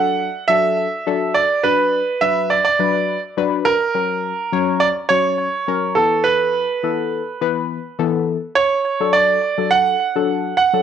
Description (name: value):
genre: pop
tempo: 104 BPM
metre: 4/4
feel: straight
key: D major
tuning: A4 = 439 Hz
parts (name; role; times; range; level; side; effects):
- bright concert grand piano; melody; 0.0-10.8 s; A4 to F#5; -17 LUFS; right 5 dB; tape echo
- deep mellow chord stab; accompaniment; 0.0-10.8 s; E3 to C#5; -21 LUFS; left 10 dB; chorus, cassette tape
room: moderate spring reverb, RT60 1.3 s, studio ambience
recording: home recording on cassette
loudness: -16 LUFS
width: side -8 dB against mid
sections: 0.0-8.6 A section; 8.6-10.8 B section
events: none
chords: 0.0 D; 1.6 Bm; 4.0 F#; 6.0 Asus2; 8.6 D